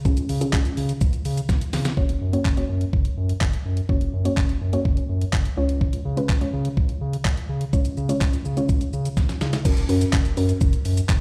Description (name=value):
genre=dance-pop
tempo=125 BPM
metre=4/4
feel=straight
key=F# major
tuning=A4 = 440 Hz
part: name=soft round pluck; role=accompaniment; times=0.0-11.0 s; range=G#3 to C#5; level=-29 LUFS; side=equal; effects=chorus, sidechain pumping
part: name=saturated sub bass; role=bass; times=0.1-11.2 s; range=F#1 to C#3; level=-27 LUFS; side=equal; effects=sidechain pumping
part: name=clean 12-bit digital drum machine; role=drums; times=0.1-11.2 s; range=crash cymbal, handclaps, hi-hat, kick drum, shaker, snare drum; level=-24 LUFS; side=equal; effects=none
room=light reverb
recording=played on a big sound system in a bare room, large studio reverb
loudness=-23 LUFS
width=mono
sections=0.0-2.0 A section; 2.0-9.7 B section; 9.7-11.2 A section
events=drum fill 1.5-2.0, 9.2-9.7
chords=0.0 C#; 2.0 F#; 5.6 C#; 9.7 F#